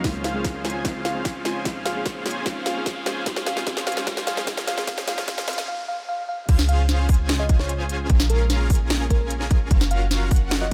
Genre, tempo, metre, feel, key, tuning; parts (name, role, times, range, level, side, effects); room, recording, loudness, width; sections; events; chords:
future bass; 149 BPM; 4/4; half-time; Db major; A4 = 441 Hz
bell-like FM electric piano; melody; 0.0-10.7 s; Bb4 to F5; -34 LUFS; equal; chorus, sidechain pumping, low-pass filter, tape echo
soft round pluck; accompaniment; 0.0-5.5 s; Ab3 to Ab4; -37 LUFS; equal; chorus, sidechain pumping, delay
airy breathy pad; sustained chords; 0.0-10.7 s; Db3 to C5; -41 LUFS; equal
dense compressed supersaw; riff; 0.0-10.7 s; Db4 to Ab5; -32 LUFS; equal; sidechain pumping, low-pass filter, delay
warm 808-style bass; bass; 0.0-10.7 s; Gb1 to Eb2; -26 LUFS; equal; sidechain pumping
electronic kick drum; drums; 0.0-10.4 s; -22 LUFS; equal
trap drum kit; drums; 0.0-10.6 s; crash cymbal, hi-hat, snare drum; -30 LUFS; equal
riser; sound effects; 0.2-5.7 s; -40 LUFS; equal
light reverb, digital ambience; high-pass filter; -23 LUFS; mono
0.0-6.5 A section; 6.5-10.7 B section
build-up 0.0-6.5; drum fill 0.0-5.7; filter sweep 0.0-6.5; break 5.7-6.5; drop 6.5-10.7
0.0 Dbmaj7; 1.7 Bbm7; 3.3 Gbmaj7; 4.9 Ebm7; 6.5 Dbmaj7; 8.1 Bbm7; 9.7 Gbmaj7